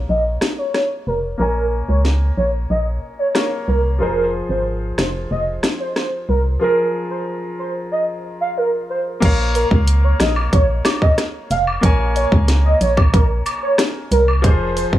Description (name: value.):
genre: dancehall.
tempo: 92 BPM.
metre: 4/4.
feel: straight.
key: Bb minor.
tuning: A4 = 442 Hz.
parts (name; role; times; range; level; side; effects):
clear concert grand piano; accompaniment; 0.0-15.0 s; F3 to Ab5; -26 LUFS; left 2 dB; low-pass filter.
organ-like FM bass; bass; 0.0-15.0 s; F1 to Db2; -18 LUFS; equal; none.
warm velvety synth lead; melody; 0.1-14.9 s; Bb4 to F5; -20 LUFS; right 2 dB; chorus, low-pass filter, analog delay.
island pop drum kit; drums; 0.4-15.0 s; crash cymbal, hi-hat, kick drum, rim click, snare drum; -17 LUFS; equal; none.
cabasa and woodblock; percussion; 9.6-14.9 s; none; -27 LUFS; equal; none.
room: digital ambience.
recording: dry, gritty hardware recording, small room ambience.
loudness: -15 LUFS.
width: side -13 dB against mid.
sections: 0.0-9.2 A section; 9.2-15.0 B section.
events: filter sweep 0.0-9.2.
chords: 0.0 Bbm; 4.0 Fm; 9.2 Bbm; 14.4 Fm.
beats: 0.09 0.74 | 1.40 2.05 2.70 3.35 | 4.01 4.66 5.31 5.96 | 6.62 7.27 7.92 8.57 | 9.22 9.88 10.53 11.18 | 11.83 12.48 13.14 13.79 | 14.44.